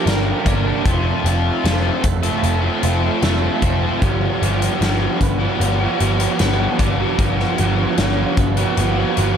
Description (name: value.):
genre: rock, shoegaze and dream pop.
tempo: 76 BPM.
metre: 4/4.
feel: straight.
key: unclear.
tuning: A4 = 439 Hz.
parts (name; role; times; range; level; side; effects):
twelve-string electric guitar; arpeggios; 0.0-9.4 s; F3 to D4; -26 LUFS; right 9 dB; ensemble chorus, slapback echo.
cranked stack guitar; riff; 0.0-9.4 s; G2 to Bb4; -22 LUFS; left 12 dB; overdrive, wide subtle chorus.
raw garage guitar; riff; 0.0-9.4 s; F2 to G4; -22 LUFS; right 12 dB; overdrive, reverse reverb.
vintage muted picked electric bass; bass; 0.1-9.4 s; F1 to G1; -20 LUFS; left 1 dB; none.
huge arena drum kit; drums; 0.1-9.4 s; hi-hat, kick drum, snare drum; -22 LUFS; left 1 dB; none.
room: little or no reverb.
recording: none.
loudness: -16 LUFS.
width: side -8 dB against mid.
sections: 0.0-9.4 A section.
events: none.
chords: 0.0 Gm7; 0.9 F; 4.0 G7.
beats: 0.07 | 0.86 1.65 2.44 3.23 | 4.02 4.81 5.61 6.40 | 7.19 7.99 8.78.